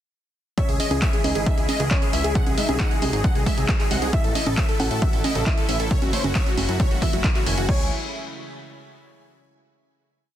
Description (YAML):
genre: uplifting trance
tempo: 135 BPM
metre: 4/4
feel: straight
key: C# harmonic minor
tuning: A4 = 440 Hz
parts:
  - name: supersaw chords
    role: melody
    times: 0.6-7.9 s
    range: F#4 to G#5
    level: -28 LUFS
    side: equal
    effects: sidechain pumping, digital delay
  - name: dark grand piano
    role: second line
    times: 0.6-7.9 s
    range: C#4 to F#5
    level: -33 LUFS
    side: equal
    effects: digital delay
  - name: wide unison pluck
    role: second line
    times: 0.6-7.9 s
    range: F#4 to G#5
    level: -37 LUFS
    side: equal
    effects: none
  - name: lush unison pad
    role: sustained chords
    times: 0.6-7.9 s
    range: B#2 to E4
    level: -33 LUFS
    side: equal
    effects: chorus, sidechain pumping
  - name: wide unison pluck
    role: arpeggios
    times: 0.6-7.9 s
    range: B#2 to C#5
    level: -33 LUFS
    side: right 5 dB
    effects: none
  - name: electronic kick drum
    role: drums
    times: 0.6-7.8 s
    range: none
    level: -22 LUFS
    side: equal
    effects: overdrive
  - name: techno drum kit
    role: drums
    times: 0.6-7.8 s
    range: congas, crash cymbal, handclaps, hi-hat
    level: -28 LUFS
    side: right 1 dB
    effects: none
  - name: fat analog bass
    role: bass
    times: 0.7-7.9 s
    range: F#1 to A2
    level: -27 LUFS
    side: equal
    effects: tube saturation, sidechain pumping
room: digital ambience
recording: dense, heavily limited modern master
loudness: -19 LUFS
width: side -11 dB against mid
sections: 0.6-7.7 drop; 7.7-9.5 final chord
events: drop 0.6-7.7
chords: 0.6 C#m; 2.4 G#7; 4.1 A; 5.9 F#m7; 7.7 C#m